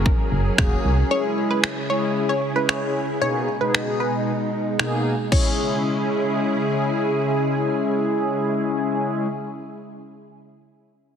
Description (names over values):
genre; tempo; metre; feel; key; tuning
dance-pop; 114 BPM; 4/4; straight; C# dorian; A4 = 439 Hz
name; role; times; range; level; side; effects
wide unison pluck; melody; 0.0-6.9 s; A#4 to C#5; -26 LUFS; moving between left 3 dB and right 4 dB; auto-pan, sidechain pumping, ping-pong delay
mellow synth brass; accompaniment; 0.0-9.3 s; B2 to A#4; -23 LUFS; left 1 dB; chorus, sidechain pumping
soft string machine; sustained chords; 0.0-9.3 s; B2 to A#4; -27 LUFS; equal; ensemble chorus, sidechain pumping
solid FM bass; bass; 0.0-1.0 s; E1 to B#1; -21 LUFS; equal; sidechain pumping
downlifter; sound effects; 0.0-1.1 s; none; -44 LUFS; right 1 dB; none
pop drum kit; drums; 0.1-5.4 s; crash cymbal, finger snaps, kick drum; -22 LUFS; equal; none
room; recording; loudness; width
moderate plate reverb, RT60 2.5 s; heavily compressed radio sound; -19 LUFS; side -8 dB against mid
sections
0.0-5.3 A section; 5.3-9.5 B section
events
none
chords
0.0 F#add9; 1.1 C#m; 3.2 G#madd9/B; 5.3 C#m